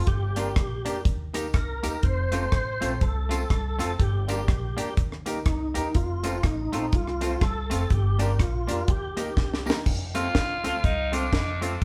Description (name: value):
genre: ska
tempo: 123 BPM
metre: 4/4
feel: swing 60% on 8ths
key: F mixolydian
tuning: A4 = 440 Hz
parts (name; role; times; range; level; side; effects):
- tonewheel organ; melody; 0.0-9.6 s; Eb4 to C5; -34 LUFS; equal; overdrive, chorus vibrato, slow rotary speaker
- upright bass; bass; 0.0-11.8 s; F1 to F2; -32 LUFS; equal; none
- deep reggae drum kit; drums; 0.1-11.8 s; crash cymbal, hi-hat, kick drum, rim click, snare drum; -28 LUFS; equal; none
- semi-hollow electric guitar; accompaniment; 0.4-11.7 s; A3 to G4; -38 LUFS; equal; tape echo
- warm upright piano; stabs; 0.4-11.7 s; C4 to Bb4; -37 LUFS; equal; none
- tambourine; percussion; 0.4-11.7 s; none; -49 LUFS; equal; tape echo
- raspy tenor saxophone; melody; 10.2-11.8 s; C4 to F4; -30 LUFS; equal; tape echo
room: moderate studio reverb, RT60 0.9 s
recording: band playing live in one room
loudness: -26 LUFS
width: mono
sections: 0.0-9.9 A section; 9.9-11.8 B section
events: drum fill 9.4-9.9; tenor saxophone solo 9.9-11.8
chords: 0.1 Gm; 1.1 Eb; 2.0 F; 4.0 Gm; 5.0 Eb; 6.0 F; 7.9 Gm; 8.9 Eb; 9.9 F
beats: | 0.07 0.56 1.05 1.54 | 2.03 2.52 3.01 3.50 | 3.99 4.48 4.97 5.46 | 5.95 6.44 6.93 7.42 | 7.91 8.40 8.89 9.38 | 9.87 10.35 10.84 11.33 | 11.82